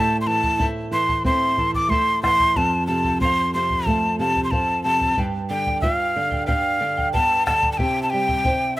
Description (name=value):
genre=andean folk, Andean ensemble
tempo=92 BPM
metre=4/4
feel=straight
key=A minor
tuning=A4 = 442 Hz
part: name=breathy quena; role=melody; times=0.0-8.8 s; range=E5 to D6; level=-20 LUFS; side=equal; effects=none
part: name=charango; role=accompaniment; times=0.0-8.8 s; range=E4 to A5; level=-32 LUFS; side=right 1 dB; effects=none
part: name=flamenco guitar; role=accompaniment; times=0.0-8.8 s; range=F2 to C5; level=-25 LUFS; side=right 1 dB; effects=none
part: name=bombo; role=percussion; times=0.4-8.6 s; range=none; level=-27 LUFS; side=equal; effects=none
room=light reverb, small room ambience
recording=rough home demo mix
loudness=-18 LUFS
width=side -17 dB against mid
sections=0.0-8.8 A section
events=none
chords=0.0 Am; 2.6 F; 5.2 G7; 7.8 C